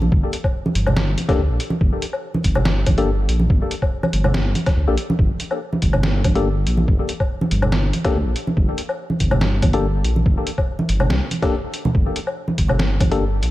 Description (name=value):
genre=deep dubstep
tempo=142 BPM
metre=4/4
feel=half-time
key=G minor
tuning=A4 = 440 Hz
part: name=dark detuned saw bass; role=bass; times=0.0-13.5 s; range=G1 to D2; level=-19 LUFS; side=equal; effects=none
part: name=congas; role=percussion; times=0.0-13.1 s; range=none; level=-24 LUFS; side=right 2 dB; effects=none
part: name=electronic kick drum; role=drums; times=0.1-13.1 s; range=none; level=-20 LUFS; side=equal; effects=small room ambience
part: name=trip hop sampler-style drum kit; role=drums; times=0.3-13.5 s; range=hi-hat, snare drum, woodblock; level=-24 LUFS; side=left 1 dB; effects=small room ambience
part: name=percussive organ stab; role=stabs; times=1.3-13.2 s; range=Bb3 to A4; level=-26 LUFS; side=left 4 dB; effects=chorus, dub echo
room=little or no reverb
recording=none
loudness=-17 LUFS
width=side -16 dB against mid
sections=0.0-13.5 A section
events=none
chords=0.0 Gmadd9